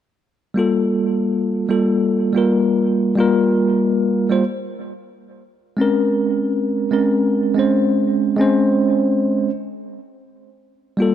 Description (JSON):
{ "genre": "chillout", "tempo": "92 BPM", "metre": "4/4", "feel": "straight", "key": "G minor", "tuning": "A4 = 445 Hz", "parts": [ { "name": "bell-like tine electric piano", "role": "accompaniment", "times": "0.5-11.1 s", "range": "G3 to C5", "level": "-16 LUFS", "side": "equal", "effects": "auto-pan, analog delay" } ], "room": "light reverb, digital ambience", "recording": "dry, gritty hardware recording", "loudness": "-15 LUFS", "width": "side -10 dB against mid", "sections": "0.1-11.1 A section", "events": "none", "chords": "0.1 Gm9; 5.3 Bbm9; 10.5 Gm9", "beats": "| 0.07 0.72 1.38 2.03 | 2.68 3.33 3.98 4.64 | 5.29 5.94 6.59 7.25 | 7.90 8.55 9.20 9.85 | 10.51" }